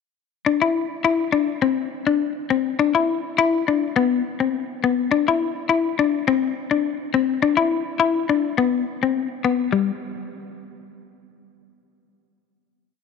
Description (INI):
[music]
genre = highlife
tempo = 104 BPM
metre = 4/4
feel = straight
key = unclear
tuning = A4 = 440 Hz
[part]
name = clean electric guitar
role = solo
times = 0.5-9.9 s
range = G3 to E4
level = -19 LUFS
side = left 7 dB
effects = none
[sound]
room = moderate plate reverb, RT60 3.3 s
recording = none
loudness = -19 LUFS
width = side -5 dB against mid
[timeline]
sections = 0.5-9.7 groove; 9.7-12.0 final note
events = none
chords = none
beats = | 0.46 1.04 1.63 2.21 | 2.79 3.37 3.96 4.54 | 5.12 5.70 6.28 6.86 | 7.43 8.01 8.59 9.16 | 9.73